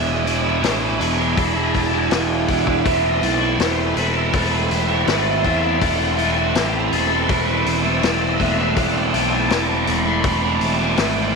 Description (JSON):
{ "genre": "psychedelic rock", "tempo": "81 BPM", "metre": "4/4", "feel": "straight", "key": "unclear", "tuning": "A4 = 438 Hz", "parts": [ { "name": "combo organ", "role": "sustained chords", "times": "0.0-11.4 s", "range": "G#4 to E5", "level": "-28 LUFS", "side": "right 12 dB", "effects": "none" }, { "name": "crunchy overdriven guitar", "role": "riff", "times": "0.0-11.4 s", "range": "E2 to E4", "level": "-18 LUFS", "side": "equal", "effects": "flanger" }, { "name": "fuzz picked electric bass", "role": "bass", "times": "0.0-11.3 s", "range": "E1 to E2", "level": "-23 LUFS", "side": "equal", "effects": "overdrive" }, { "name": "vintage drum kit", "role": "drums", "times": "0.3-11.2 s", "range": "hi-hat, kick drum, snare drum", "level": "-25 LUFS", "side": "left 4 dB", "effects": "none" } ], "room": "light reverb, studio ambience", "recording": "1960s-style stereo", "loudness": "-16 LUFS", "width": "side -4 dB against mid", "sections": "0.0-11.4 A section", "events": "none", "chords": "0.0 E7; 2.9 Am/E" }